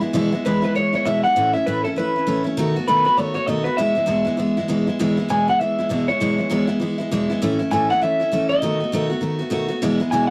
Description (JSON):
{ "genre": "rock", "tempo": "198 BPM", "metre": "4/4", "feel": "swing 60% on 8ths", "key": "E major", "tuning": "A4 = 439 Hz", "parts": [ { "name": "picked steel-string acoustic guitar", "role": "accompaniment", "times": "0.0-10.3 s", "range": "E2 to F#4", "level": "-23 LUFS", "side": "equal", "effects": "none" }, { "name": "electric guitar through a small old amp", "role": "melody", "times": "0.5-10.3 s", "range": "A4 to G#5", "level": "-22 LUFS", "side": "equal", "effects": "none" } ], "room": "wet booth ambience, RT60 0.2 s", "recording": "rough rehearsal-room recording", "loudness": "-20 LUFS", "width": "mono", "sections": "0.0-5.0 A section; 5.0-10.3 B section", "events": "none", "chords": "0.0 E; 1.4 A; 2.6 B7; 3.8 E; 7.4 A; 8.6 B7" }